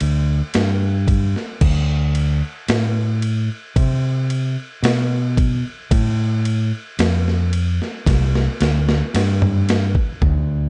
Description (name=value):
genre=stoner and doom metal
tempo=56 BPM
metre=4/4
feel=straight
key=D dorian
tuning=A4 = 440 Hz
part: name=fingered electric bass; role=bass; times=0.0-10.7 s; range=C2 to C3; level=-20 LUFS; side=equal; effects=overdrive
part: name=boom bap sampler-style drum kit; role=drums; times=0.0-10.5 s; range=crash cymbal, kick drum, ride cymbal, snare drum, toms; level=-24 LUFS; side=equal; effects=none
room=little or no reverb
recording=dark, warm production, nothing above 10.3 kHz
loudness=-19 LUFS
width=mono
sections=0.0-10.2 A section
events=drum fill 8.1-10.2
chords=none